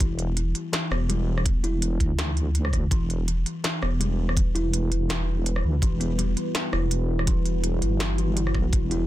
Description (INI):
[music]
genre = half-time drum and bass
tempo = 165 BPM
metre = 4/4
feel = swing 55% on 16ths, half-time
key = E minor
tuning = A4 = 441 Hz
[part]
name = buzzing kalimba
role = arpeggios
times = 0.0-9.1 s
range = E3 to E4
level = -31 LUFS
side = left 2 dB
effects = dub echo
[part]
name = deep soft wobble bass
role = bass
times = 0.0-9.1 s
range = E1 to D2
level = -25 LUFS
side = equal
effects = chorus
[part]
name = electronic kick drum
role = drums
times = 0.0-8.8 s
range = none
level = -24 LUFS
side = equal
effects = none
[part]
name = industrial drum kit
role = drums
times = 0.0-9.0 s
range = hi-hat, rim click, snare drum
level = -29 LUFS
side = right 1 dB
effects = none
[part]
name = deep dark ambient pad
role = sustained chords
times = 4.2-9.1 s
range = G3 to B4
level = -33 LUFS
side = right 1 dB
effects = chorus, built-in reverb, sidechain pumping
[sound]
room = little or no reverb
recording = dense, heavily limited modern master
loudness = -22 LUFS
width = side -14 dB against mid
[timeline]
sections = 0.0-9.1 A section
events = none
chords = 0.0 Emadd9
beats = | 0.00 0.37 0.73 1.09 | 1.46 1.82 2.19 2.55 | 2.91 3.28 3.64 4.00 | 4.37 4.73 5.09 5.46 | 5.82 6.18 6.55 6.91 | 7.28 7.64 8.00 8.37 | 8.73